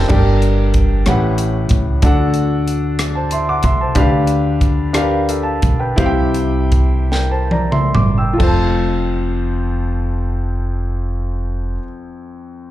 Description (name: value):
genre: slow gospel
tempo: 43-62 BPM (dotted quarters)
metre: 6/8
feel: straight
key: F major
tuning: A4 = 437 Hz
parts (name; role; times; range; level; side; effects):
- clear concert grand piano; accompaniment; 0.0-12.7 s; F2 to E6; -18 LUFS; left 1 dB; slapback echo
- upright bass; bass; 0.0-11.8 s; F1 to D2; -18 LUFS; equal; none
- crisp fusion drum kit; drums; 0.1-8.6 s; crash cymbal, hi-hat, kick drum, rim click, snare drum, toms; -18 LUFS; right 1 dB; none
room: small room ambience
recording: live gig heard through the venue's PA, club reverb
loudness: -14 LUFS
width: side -14 dB against mid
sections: 0.1-8.4 A section; 8.4-12.7 B section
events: slowing down 4.0-8.4; drum fill 7.1-8.4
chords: 0.1 Gm; 1.1 A13; 2.0 D; 4.0 G7/D; 6.0 C; 8.4 F